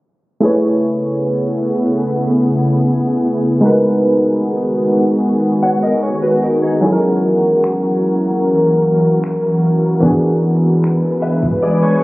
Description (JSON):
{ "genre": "contemporary R&B", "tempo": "75 BPM", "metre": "4/4", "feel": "straight", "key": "unclear", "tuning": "A4 = 441 Hz", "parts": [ { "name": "warm analog keys", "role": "accompaniment", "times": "0.4-12.0 s", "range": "E3 to C#5", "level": "-15 LUFS", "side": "equal", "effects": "chorus" }, { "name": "glassy FM pad", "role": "sustained chords", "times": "0.9-12.0 s", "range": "C#3 to B4", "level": "-16 LUFS", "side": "equal", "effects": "ensemble chorus, built-in reverb, sidechain pumping" }, { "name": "direct-recorded clean electric guitar", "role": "arpeggios", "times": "5.6-12.0 s", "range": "D#4 to F#5", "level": "-18 LUFS", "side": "equal", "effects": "ensemble chorus, tape echo" }, { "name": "trap drum kit", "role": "drums", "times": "7.6-11.8 s", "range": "finger snaps, hi-hat, kick drum", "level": "-22 LUFS", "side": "equal", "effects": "none" }, { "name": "swell", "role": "sound effects", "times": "11.3-12.0 s", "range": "none", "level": "-22 LUFS", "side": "equal", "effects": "none" } ], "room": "moderate lush hall reverb, RT60 2.6 s", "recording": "recorded on a phone in the room, club reverb, low-pass filter", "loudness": "-12 LUFS", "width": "side -20 dB against mid", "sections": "0.4-12.0 A section", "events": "filter sweep 0.4-12.0; swell 11.3-12.0", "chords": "0.4 Amaj9; 3.6 G#m7; 6.8 F#7; 10.0 E7" }